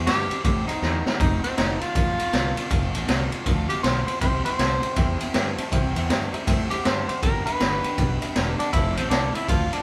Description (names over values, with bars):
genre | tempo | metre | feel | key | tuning
rockabilly | 159 BPM | 4/4 | swing 63% on 8ths | C major | A4 = 440 Hz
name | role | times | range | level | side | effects
picked steel-string acoustic guitar | accompaniment | 0.0-9.8 s | C3 to C5 | -38 LUFS | equal | none
fuzz fingered electric bass | bass | 0.0-9.7 s | E1 to A2 | -30 LUFS | equal | overdrive
warm tenor saxophone | melody | 0.1-9.8 s | C4 to C5 | -29 LUFS | equal | none
raw garage drum kit | drums | 0.1-9.8 s | kick drum, ride cymbal, snare drum | -26 LUFS | equal | none
warm upright piano | accompaniment | 4.2-9.8 s | B4 to Bb5 | -38 LUFS | equal | none
room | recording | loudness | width
moderate large studio reverb, RT60 0.9 s | band playing live in one room | -23 LUFS | mono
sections
0.0-9.8 A section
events
drum fill 0.8-1.2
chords
0.0 C; 1.2 F; 4.2 C; 7.2 G; 8.7 F